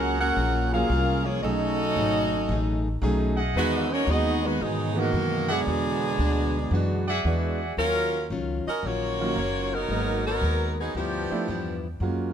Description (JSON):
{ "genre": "jazz, big band swing", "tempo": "114 BPM", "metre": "4/4", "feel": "swing 68% on 8ths", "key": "Eb minor", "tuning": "A4 = 440 Hz", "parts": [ { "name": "warm saxophone section", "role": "melody", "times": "0.0-11.8 s", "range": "F3 to Gb5", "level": "-27 LUFS", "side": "right 1 dB", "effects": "none" }, { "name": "clear trombone section", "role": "second line", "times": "0.0-7.3 s", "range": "B2 to Gb4", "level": "-29 LUFS", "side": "right 1 dB", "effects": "none" }, { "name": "picked plugged-in steel-string acoustic guitar", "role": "accompaniment", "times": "0.0-12.3 s", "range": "G2 to Bb4", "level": "-34 LUFS", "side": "left 4 dB", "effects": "none" }, { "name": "clear trumpet section", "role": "stabs", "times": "0.0-7.7 s", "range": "Gb4 to Gb5", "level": "-32 LUFS", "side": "right 1 dB", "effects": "none" }, { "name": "upright bass", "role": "bass", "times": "0.0-12.3 s", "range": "Gb1 to G#2", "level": "-28 LUFS", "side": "equal", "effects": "none" }, { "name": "clear concert grand piano", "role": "accompaniment", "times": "0.7-12.3 s", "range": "Eb3 to Ab4", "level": "-31 LUFS", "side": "right 3 dB", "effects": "none" } ], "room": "moderate echo chamber reverb, RT60 1.8 s", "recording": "none", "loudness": "-23 LUFS", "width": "side -9 dB against mid", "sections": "0.0-7.8 A section; 7.8-12.3 B section", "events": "none", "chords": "0.0 Gbmaj9; 1.4 B13; 3.5 Emaj9; 5.7 E9; 7.8 Ebm9; 9.9 Abm9; 10.9 G13", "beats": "0.38 0.90 | 1.43 1.96 2.49 3.02 | 3.54 4.07 4.60 5.13 | 5.66 6.19 6.72 7.24 | 7.77 8.30 8.83 9.36 | 9.89 10.42 10.95 11.48 | 12.01" }